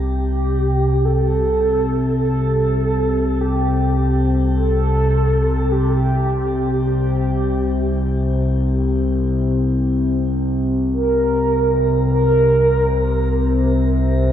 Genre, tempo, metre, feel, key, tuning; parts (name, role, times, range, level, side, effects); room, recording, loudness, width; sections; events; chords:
dark ambient drone; 52 BPM; 4/4; straight; A4 = 439 Hz
mellow horn-like synth lead; melody; 0.0-13.9 s; G4 to Bb4; -20 LUFS; right 2 dB; wide subtle chorus, shimmer reverb, tape echo
analog drone; drone; 0.0-14.3 s; C2 to C3; -17 LUFS; left 1 dB; chorus
wet lush hall reverb, RT60 2.8 s; dreamy mix soaked in reverb, cassette tape; -16 LUFS; side -10 dB against mid
0.0-14.3 A section